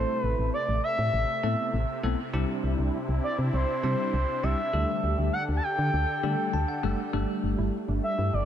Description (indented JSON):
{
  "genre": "synth-pop",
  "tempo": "100 BPM",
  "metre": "4/4",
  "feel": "straight",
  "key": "unclear",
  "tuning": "A4 = 440 Hz",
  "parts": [
    { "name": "expressive portamento lead", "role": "melody", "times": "0.0-8.5 s", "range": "C5 to A5", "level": "-30 LUFS", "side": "equal", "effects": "chorus, digital delay" },
    { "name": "bell-like tine electric piano", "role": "accompaniment", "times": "0.0-7.8 s", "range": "G3 to A5", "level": "-32 LUFS", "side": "left 2 dB", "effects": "medium stereo tremolo" },
    { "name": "sweeping resonant pad", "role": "sustained chords", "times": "0.0-8.5 s", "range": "C3 to A4", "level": "-35 LUFS", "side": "right 1 dB", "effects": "chorus" },
    { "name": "solid FM bass", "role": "bass", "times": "0.0-8.5 s", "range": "F#1 to D3", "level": "-28 LUFS", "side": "equal", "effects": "none" },
    { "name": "soft round pluck", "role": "arpeggios", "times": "7.1-8.3 s", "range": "D4 to E4", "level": "-39 LUFS", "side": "right 7 dB", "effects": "chorus, digital delay" }
  ],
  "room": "light reverb",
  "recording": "none",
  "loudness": "-25 LUFS",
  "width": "side -10 dB against mid",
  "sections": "0.0-8.5 A section",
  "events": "tine electric piano fill 6.2-7.1",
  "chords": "0.0 Amadd9; 2.3 Cadd9; 4.7 Dsus4; 7.1 Gsus2"
}